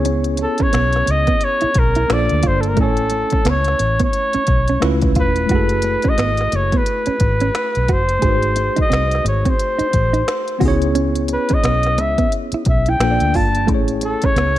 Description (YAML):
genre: R&B, neo-soul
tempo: 88 BPM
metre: 4/4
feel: swing 62% on 16ths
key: unclear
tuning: A4 = 437 Hz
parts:
  - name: tine electric piano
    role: accompaniment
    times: 0.0-14.6 s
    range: G#3 to G#5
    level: -23 LUFS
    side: equal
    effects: medium stereo tremolo
  - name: vintage muted fingered electric bass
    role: bass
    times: 0.0-14.6 s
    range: E1 to D2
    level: -20 LUFS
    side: equal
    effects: none
  - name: hollow-body jazz guitar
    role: second line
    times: 0.1-14.5 s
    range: A3 to G#4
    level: -25 LUFS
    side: right 6 dB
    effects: none
  - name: organic electronic drum kit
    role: drums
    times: 0.1-14.6 s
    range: finger snaps, hi-hat, kick drum, snare drum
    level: -20 LUFS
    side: equal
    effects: none
  - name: clear flugelhorn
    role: melody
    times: 0.4-14.6 s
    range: A4 to A5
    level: -19 LUFS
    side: equal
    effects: none
room: light reverb, digital ambience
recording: none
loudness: -14 LUFS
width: side -13 dB against mid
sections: 0.0-14.6 A section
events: none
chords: 0.0 C#m7; 2.1 A#maj7; 2.8 Amaj7; 4.8 C#7alt; 5.5 F#m11; 8.2 G#7b9; 10.6 C#m7; 13.0 A#maj7; 13.7 Amaj7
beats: | 0.04 0.73 1.41 2.09 | 2.77 3.45 4.13 4.82 | 5.50 6.18 6.86 7.54 | 8.23 8.91 9.59 10.27 | 10.95 11.63 12.32 13.00 | 13.68 14.36